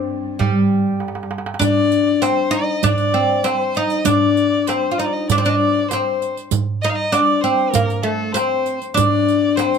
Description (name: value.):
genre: Turkish makam ensemble.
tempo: 98 BPM.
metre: 4/4.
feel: straight.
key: G makam ussak.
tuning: A4 = 440 Hz.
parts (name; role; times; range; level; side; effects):
oud; melody; 0.0-9.8 s; G3 to F4; -17 LUFS; left 2 dB; none.
clear studio cello section; drone; 0.0-1.7 s; G2; -35 LUFS; right 3 dB; none.
darbuka; percussion; 0.1-9.7 s; none; -23 LUFS; right 5 dB; none.
rich violin; second line; 1.6-9.8 s; A4-30c to F5; -22 LUFS; equal; none.
riq; percussion; 1.6-9.8 s; none; -27 LUFS; right 8 dB; none.
room: moderate small room reverb, RT60 0.6 s.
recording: none.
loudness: -16 LUFS.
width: side -6 dB against mid.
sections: 0.0-1.6 A section; 1.6-9.8 B section.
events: drum fill 1.0-1.6.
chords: none.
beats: 0.39 1.00 | 1.61 2.23 2.84 3.45 | 4.07 4.68 5.29 5.91 | 6.52 7.13 7.75 8.36 | 8.97 9.59.